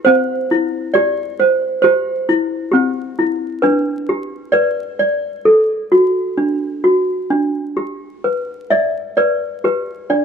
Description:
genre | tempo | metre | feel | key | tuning
children's music, lullaby | 65 BPM | 4/4 | rubato | G major | A4 = 437 Hz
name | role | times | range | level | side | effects
toy piano | solo | 0.0-10.2 s | C4 to E5 | -14 LUFS | equal | none
room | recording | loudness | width
moderate plate reverb, RT60 2.5 s | dark, warm production, vinyl crackle | -14 LUFS | side -6 dB against mid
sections
0.0-7.3 A section; 7.3-10.2 B section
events
none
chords
0.1 C; 3.6 G/D; 5.5 D; 7.3 G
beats
| 0.06 0.95 1.83 2.73 | 3.63 4.54 5.45 6.38 | 7.31 8.24 9.18 10.10

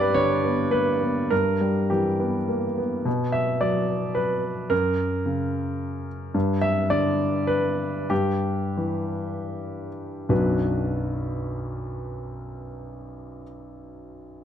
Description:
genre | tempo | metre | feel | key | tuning
neoclassical minimalist piano | 72-112 BPM | 3/4 | rubato | B harmonic minor | A4 = 439 Hz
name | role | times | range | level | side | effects
warm grand piano | solo | 0.0-14.4 s | B1 to E5 | -23 LUFS | equal | none
room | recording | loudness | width
light reverb | dark, warm production | -22 LUFS | side -9 dB against mid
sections
0.0-3.1 A section; 3.1-10.3 B section; 10.3-14.4 C section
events
slowing down 5.5-10.3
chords
0.0 G; 1.3 Em/G; 3.1 Bm; 4.7 F#; 6.3 G; 8.1 Em/G; 10.3 Bm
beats
0.16 0.73 | 1.31 1.90 2.48 | 3.06 3.61 4.16 | 4.71 5.25 5.79 | 6.34 6.90 7.49 | 8.10 8.76 9.49 | 10.29 11.12 11.94 | 12.77 13.60 14.43

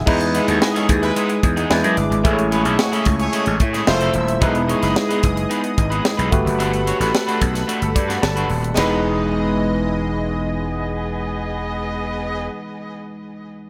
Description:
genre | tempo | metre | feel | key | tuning
polished 1980s jazz-funk pop | 110 BPM | 4/4 | straight | E major | A4 = 440 Hz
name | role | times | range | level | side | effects
barky tine electric piano | accompaniment | 0.0-13.7 s | E3 to A5 | -25 LUFS | equal | overdrive, subtle chorus
chorused pulse-width pad | sustained chords | 0.0-12.5 s | E3 to E6 | -29 LUFS | equal | none
electric guitar at the edge of break-up | riff | 0.1-12.5 s | E3 to C#5 | -28 LUFS | equal | lush chorus
gritty slap bass | bass | 0.1-12.5 s | D#1 to A2 | -24 LUFS | equal | overdrive
tight funk drum kit | drums | 0.1-8.9 s | crash cymbal, hi-hat, kick drum, ride cymbal, snare drum | -24 LUFS | equal | none
clear horn section | second line | 0.3-4.1, 8.8-12.5 s | G#3 to F#5 | -30 LUFS | equal | delay
room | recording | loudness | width
moderate plate reverb, RT60 1.6 s | bright 1980s-style digital production, faint mains hum | -19 LUFS | mono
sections
0.1-8.8 A section; 8.8-13.1 B section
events
tine electric piano fill 7.7-8.8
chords
0.1 Emaj7; 1.7 E7; 2.2 Amaj7; 3.9 Fmaj7; 4.4 Emaj7; 6.3 Gmaj9; 8.8 Emaj7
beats
| 0.07 0.61 1.16 1.70 | 2.24 2.79 3.33 3.88 | 4.42 4.96 5.51 6.05 | 6.59 7.14 7.68 8.23 | 8.77 9.32 9.86 10.41 | 10.95 11.50 12.04 12.59

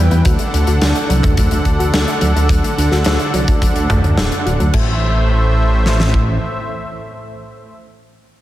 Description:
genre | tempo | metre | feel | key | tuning
synthwave | 107 BPM | 4/4 | straight | A minor | A4 = 440 Hz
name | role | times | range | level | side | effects
brassy analog pad | sustained chords | 0.0-7.7 s | A2 to G5 | -20 LUFS | equal | chorus, sidechain pumping
analog pluck | arpeggios | 0.0-5.0 s | F#3 to A4 | -23 LUFS | left 1 dB | chorus, digital delay
dark detuned saw bass | bass | 0.0-6.4 s | D1 to E2 | -15 LUFS | equal | none
huge arena drum kit | drums | 0.1-4.8 s | crash cymbal, hi-hat, snare drum, toms | -20 LUFS | equal | gated reverb
huge arena drum kit | drums | 0.3-6.3 s | kick drum, snare drum | -18 LUFS | equal | none
room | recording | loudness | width
light reverb, small room reverb | none | -12 LUFS | side -14 dB against mid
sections
0.0-4.7 A section; 4.7-7.0 B section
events
none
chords
0.3 D; 4.7 Am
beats
| 0.25 0.81 1.37 1.94 | 2.50 3.06 3.62 4.18 | 4.74 5.30 5.86 6.42

